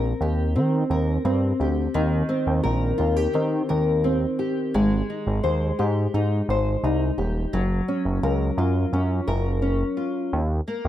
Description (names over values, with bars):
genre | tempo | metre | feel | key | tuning
indie pop, bedroom pop | 86 BPM | 4/4 | straight | Eb major | A4 = 440 Hz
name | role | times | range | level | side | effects
nylon-string guitar | accompaniment | 0.0-10.9 s | Eb3 to C5 | -24 LUFS | left 1 dB | analog chorus, vibrato effect, plate reverb
fat analog bass | bass | 0.0-10.9 s | Eb1 to Eb3 | -23 LUFS | equal | none
room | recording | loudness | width
light reverb | none | -21 LUFS | side -12 dB against mid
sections
0.0-10.9 A section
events
none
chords
0.0 Eb6; 4.7 Abmaj7; 7.5 Gbmaj7; 10.3 Eb5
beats
0.56 1.26 | 1.95 2.65 3.35 4.05 | 4.74 5.44 6.14 6.84 | 7.54 8.23 8.93 9.63 | 10.33